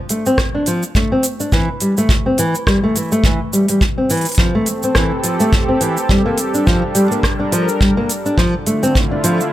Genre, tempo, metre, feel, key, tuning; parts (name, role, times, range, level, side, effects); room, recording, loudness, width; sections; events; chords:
folktronica; 105 BPM; 4/4; swing 56% on 16ths; G dorian; A4 = 440 Hz
nylon-string guitar; arpeggios; 0.1-9.4 s; E3 to D4; -16 LUFS; equal; tape echo
organic electronic drum kit; drums; 0.1-9.5 s; hi-hat, rim click, shaker; -22 LUFS; right 1 dB
kick drum; drums; 0.4-9.1 s; -16 LUFS; equal
warm analog pad; sustained chords; 4.5-9.5 s; D3 to Bb4; -21 LUFS; right 1 dB; chorus
light reverb, small room ambience; -13 LUFS; side -14 dB against mid
0.0-9.5 A section
0.0 Dm7; 1.5 A7(no3); 3.8 Fmaj7; 6.1 Gm7; 8.4 Dm